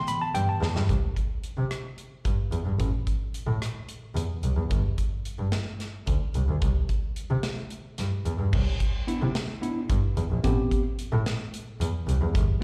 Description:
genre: progressive instrumental, band music in an uneven meter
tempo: 220 BPM (eighths)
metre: 7/8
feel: straight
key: C major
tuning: A4 = 440 Hz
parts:
  - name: tine electric piano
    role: accompaniment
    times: 0.0-0.9, 9.1-12.6 s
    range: D3 to B5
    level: -31 LUFS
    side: equal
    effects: slapback echo
  - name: big rock drum kit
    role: drums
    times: 0.1-12.5 s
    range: crash cymbal, hi-hat, kick drum, rim click, snare drum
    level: -31 LUFS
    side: equal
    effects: none
  - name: tube shaker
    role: percussion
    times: 0.1-0.5 s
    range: none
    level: -51 LUFS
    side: equal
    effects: none
  - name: bright double bass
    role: bass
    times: 0.3-12.4 s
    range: G1 to C3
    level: -29 LUFS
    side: equal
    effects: none
room: little or no reverb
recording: live gig heard through the venue's PA, recital hall reverb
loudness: -28 LUFS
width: mono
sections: 0.9-8.5 A section; 8.5-12.6 B section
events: drum fill 0.6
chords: 0.0 Cmaj7 (rootless); 0.9 C; 2.8 Am; 4.7 Gsus4; 6.6 C; 8.5 Cmaj7 (rootless); 10.4 Am7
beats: 0.07 0.35 0.62 | 0.89 1.16 1.43 1.71 1.98 2.25 2.52 | 2.80 3.07 3.34 3.62 3.89 4.16 4.44 | 4.71 4.98 5.26 5.53 5.80 6.08 6.35 | 6.62 6.90 7.17 7.44 7.71 7.99 8.26 | 8.53 8.81 9.08 9.35 9.62 9.90 10.17 | 10.44 10.71 10.98 11.26 11.53 11.80 12.07 | 12.34 12.61

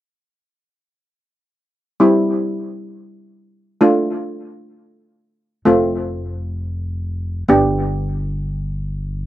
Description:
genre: calypso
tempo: free time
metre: none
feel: none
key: C major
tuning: A4 = 441 Hz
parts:
  - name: steel pan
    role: accompaniment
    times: 2.0-9.3 s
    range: G3 to G4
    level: -15 LUFS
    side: equal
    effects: slapback echo
  - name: upright bass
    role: bass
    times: 5.7-9.3 s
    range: F1 to G1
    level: -23 LUFS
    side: equal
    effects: none
room: light reverb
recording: recorded outdoors, with no room sound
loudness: -17 LUFS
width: side -14 dB against mid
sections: 2.0-9.3 A section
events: none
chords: 2.0 C; 3.8 Dm; 5.7 F; 7.5 G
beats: free time

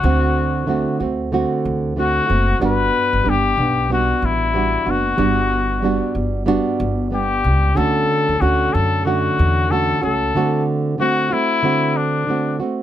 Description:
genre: pop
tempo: 93 BPM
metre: 4/4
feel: swing 60% on 16ths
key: D major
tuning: A4 = 440 Hz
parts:
  - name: warm trumpet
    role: melody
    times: 0.0-12.6 s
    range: D4 to B4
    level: -19 LUFS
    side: left 5 dB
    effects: none
  - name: nylon-string guitar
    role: accompaniment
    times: 0.0-12.8 s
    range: D3 to F#4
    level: -20 LUFS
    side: right 3 dB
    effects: none
  - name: upright bass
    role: bass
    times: 0.0-10.3 s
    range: F#1 to F#2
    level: -21 LUFS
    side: equal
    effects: none
room: little or no reverb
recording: close, detailed microphones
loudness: -16 LUFS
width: side -11 dB against mid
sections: 0.0-12.8 A section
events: none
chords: 0.0 D7; 2.6 Gmaj7; 7.8 Dmaj7; 10.3 D7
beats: | 0.04 0.68 1.32 1.97 | 2.61 3.26 3.90 4.55 | 5.19 5.84 6.48 7.12 | 7.77 8.41 9.06 9.70 | 10.35 10.99 11.63 12.28

